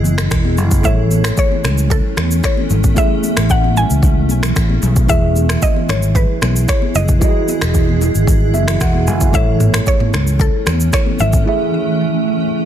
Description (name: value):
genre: afrobeats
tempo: 113 BPM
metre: 4/4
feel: straight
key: unclear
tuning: A4 = 439 Hz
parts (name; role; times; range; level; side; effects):
- tine electric piano; accompaniment; 0.0-12.7 s; E3 to G#5; -21 LUFS; right 4 dB; phaser
- granular cloud pad; sustained chords; 0.0-12.7 s; E3 to G#4; -22 LUFS; right 1 dB; built-in reverb
- fingered electric bass; bass; 0.0-11.4 s; E1 to E2; -15 LUFS; equal; none
- afro-pop drum kit; drums; 0.0-11.5 s; finger snaps, kick drum, rim click, shaker, toms; -16 LUFS; equal; overdrive, soft clipping on snare
- congas; percussion; 0.0-11.5 s; none; -26 LUFS; left 9 dB; none
- mallet-like synth pluck; melody; 0.8-12.7 s; A4 to G#5; -22 LUFS; left 1 dB; chorus, ping-pong delay
room: little or no reverb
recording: dense, heavily limited modern master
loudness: -12 LUFS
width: side -10 dB against mid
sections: 0.0-12.7 A section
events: tine electric piano fill 8.3-9.3; break 11.5-12.7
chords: 0.0 Emaj7; 0.8 Amaj7; 5.1 Emaj7; 9.3 Amaj7